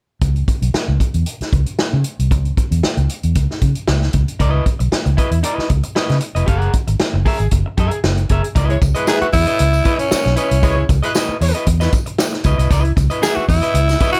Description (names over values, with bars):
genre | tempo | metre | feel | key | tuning
funk | 116 BPM | 4/4 | straight | C# dorian | A4 = 440 Hz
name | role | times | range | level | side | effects
vintage muted fingered electric bass | bass | 0.2-13.9 s | E#1 to C#3 | -19 LUFS | equal | none
swinging big-band drum kit | drums | 0.2-14.2 s | hi-hat, kick drum, snare drum | -21 LUFS | equal | none
electric guitar at the edge of break-up | accompaniment | 4.4-14.2 s | E4 to F#5 | -25 LUFS | equal | none
tambourine | percussion | 8.6-14.2 s | none | -35 LUFS | equal | none
warm horn section | second line | 8.7-11.5 s | G#3 to C#5 | -25 LUFS | equal | none
raspy tenor saxophone | melody | 9.1-14.2 s | C#4 to G#4 | -20 LUFS | equal | slapback echo
room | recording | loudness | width
light reverb | none | -17 LUFS | mono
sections
0.2-8.6 A section; 8.6-14.2 B section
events
none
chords
0.2 C#m9; 6.5 F#9; 8.6 C#m9